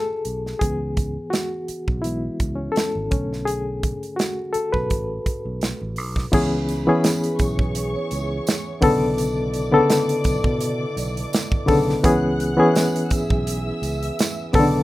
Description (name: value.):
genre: lush 1970s-style soul.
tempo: 84 BPM.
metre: 4/4.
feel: swing 54% on 16ths.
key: unclear.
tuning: A4 = 440 Hz.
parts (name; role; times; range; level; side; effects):
barky reed electric piano; accompaniment; 0.0-14.8 s; C#3 to B4; -21 LUFS; left 1 dB; overdrive, fast tremolo.
modern studio drum kit; drums; 0.2-14.7 s; crash cymbal, hi-hat, kick drum, snare drum; -24 LUFS; right 1 dB; none.
fingered electric bass; bass; 0.3-14.8 s; G#1 to B2; -28 LUFS; right 1 dB; none.
dark symphonic string section; second line; 6.3-14.8 s; B4 to F#6; -33 LUFS; right 1 dB; none.
mellow French horn section; sustained chords; 6.3-14.8 s; B2 to A4; -32 LUFS; right 2 dB; none.
tambourine; percussion; 6.3-14.7 s; none; -39 LUFS; right 3 dB; none.
room: light reverb.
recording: rough home demo mix.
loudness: -19 LUFS.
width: side -17 dB against mid.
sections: 0.0-6.3 A section; 6.3-14.8 B section.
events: reed electric piano solo 0.0-6.3.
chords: 0.0 Bm9; 0.6 C#m7; 3.1 Bm9; 6.3 C#m7; 8.8 Bm9; 12.0 C#m7.